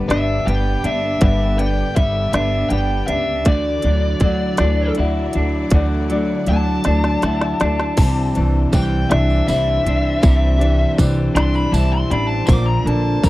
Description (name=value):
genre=folk rock and heartland rock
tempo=53 BPM (dotted quarters)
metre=6/8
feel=straight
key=G major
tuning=A4 = 440 Hz
part: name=picked steel-string acoustic guitar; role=accompaniment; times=0.0-13.3 s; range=G2 to D5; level=-24 LUFS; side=left 3 dB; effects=none
part: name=clear studio string section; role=sustained chords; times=0.0-13.3 s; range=E3 to D5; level=-33 LUFS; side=right 1 dB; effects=none
part: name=electric guitar through a small old amp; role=riff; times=0.0-13.3 s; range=G2 to G4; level=-23 LUFS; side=right 1 dB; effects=spring reverb
part: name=bluesy overdriven lead guitar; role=melody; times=0.1-13.3 s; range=D5 to D6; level=-23 LUFS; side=left 1 dB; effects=distortion
part: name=upright bass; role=bass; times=0.1-13.3 s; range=G1 to D2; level=-19 LUFS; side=equal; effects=none
part: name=organic electronic drum kit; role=drums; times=0.1-13.3 s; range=crash cymbal, hi-hat, kick drum, snare drum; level=-16 LUFS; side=equal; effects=overdrive
part: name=tambourine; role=percussion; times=8.0-13.3 s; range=none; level=-36 LUFS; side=right 5 dB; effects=none
room=little or no reverb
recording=dry, close 1970s-style studio recording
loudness=-15 LUFS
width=side -17 dB against mid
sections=0.0-13.3 A section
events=lead electric guitar solo 0.0-13.3; drum fill 6.8-8.0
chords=0.0 G; 3.5 Dadd9; 8.0 Cadd9; 12.5 Bbadd9